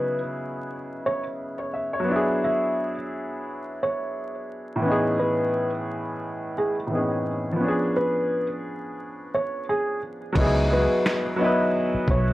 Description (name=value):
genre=lo-fi hip hop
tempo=87 BPM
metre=4/4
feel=swing 58% on 16ths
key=C# minor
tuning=A4 = 438 Hz
part: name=felt-muted upright piano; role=melody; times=0.0-12.3 s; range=G#4 to E5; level=-27 LUFS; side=equal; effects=low-pass filter, tape echo
part: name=warm upright piano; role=accompaniment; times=0.0-12.3 s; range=A2 to E5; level=-25 LUFS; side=equal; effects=low-pass filter
part: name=vintage muted fingered electric bass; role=bass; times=10.4-12.3 s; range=B1 to C#2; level=-24 LUFS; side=equal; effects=none
part: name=boom bap sampler-style drum kit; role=drums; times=10.4-12.3 s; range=crash cymbal, finger snaps, kick drum, snare drum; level=-26 LUFS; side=equal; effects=none
room=moderate studio ambience, RT60 0.5 s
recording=dry, gritty hardware recording, vinyl crackle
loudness=-23 LUFS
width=side -16 dB against mid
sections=0.0-10.3 A section; 10.3-12.3 B section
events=hi-hats muted 10.3-12.3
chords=0.0 C#m11; 2.1 E7; 4.8 Amaj9#11; 7.6 C#7b9; 10.3 C#m11